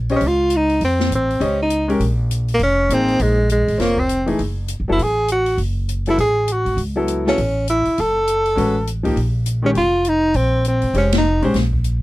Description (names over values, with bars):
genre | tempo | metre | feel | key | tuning
modal jazz | 201 BPM | 4/4 | swing 61% on 8ths | unclear | A4 = 440 Hz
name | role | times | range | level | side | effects
upright bass | bass | 0.0-12.0 s | F1 to F2 | -21 LUFS | equal | none
clear baby grand piano | accompaniment | 0.1-11.5 s | Eb3 to Eb5 | -21 LUFS | left 2 dB | none
open jazz drum kit | drums | 0.1-11.9 s | hi-hat, kick drum, ride cymbal, snare drum | -28 LUFS | left 2 dB | none
warm tenor saxophone | melody | 0.2-11.4 s | Ab3 to A4 | -17 LUFS | equal | none
room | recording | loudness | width
little or no reverb | none | -16 LUFS | side -17 dB against mid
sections
0.0-12.0 A section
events
band accent 11.1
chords
0.0 Bbm11; 4.4 Gbm11; 9.2 Bbm7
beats
0.22 0.52 | 0.82 1.11 1.41 1.71 | 2.01 2.31 2.61 2.91 | 3.20 3.50 3.80 4.10 | 4.40 4.70 5.00 5.29 | 5.59 5.89 6.19 6.49 | 6.79 7.08 7.38 7.68 | 7.98 8.28 8.57 8.87 | 9.17 9.47 9.77 10.06 | 10.36 10.66 10.96 11.25 | 11.55 11.85